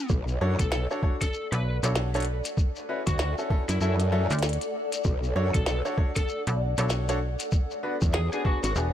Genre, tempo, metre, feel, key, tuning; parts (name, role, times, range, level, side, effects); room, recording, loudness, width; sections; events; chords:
glitch hop; 97 BPM; 4/4; swing 61% on 16ths; B dorian; A4 = 440 Hz
lead guitar through a small cranked amp; melody; 0.0-8.7 s; E4 to B4; -36 LUFS; left 1 dB; overdrive, dub echo
growl bass; bass; 0.1-8.7 s; G#1 to F#2; -26 LUFS; equal; chorus, tube saturation
electronic kick drum; drums; 0.1-8.6 s; -25 LUFS; equal; overdrive
shekere; percussion; 0.1-8.9 s; -39 LUFS; left 6 dB
granular cloud pad; texture; 1.2-8.9 s; G#4 to F#5; -34 LUFS; left 1 dB; built-in reverb, sidechain pumping
bright grand piano; stabs; 0.4-8.9 s; B3 to C#5; -33 LUFS; left 1 dB; sidechain pumping, dub echo
glitchy drum kit; drums; 0.6-8.7 s; hi-hat, snare drum; -33 LUFS; equal
slap-like FM bass; bass; 1.5-8.9 s; E1 to D2; -26 LUFS; equal
digital ambience; -24 LUFS; side -10 dB against mid
0.0-8.9 A section
0.1 Bm7; 2.6 Dmaj7; 5.0 Bm7; 7.5 E7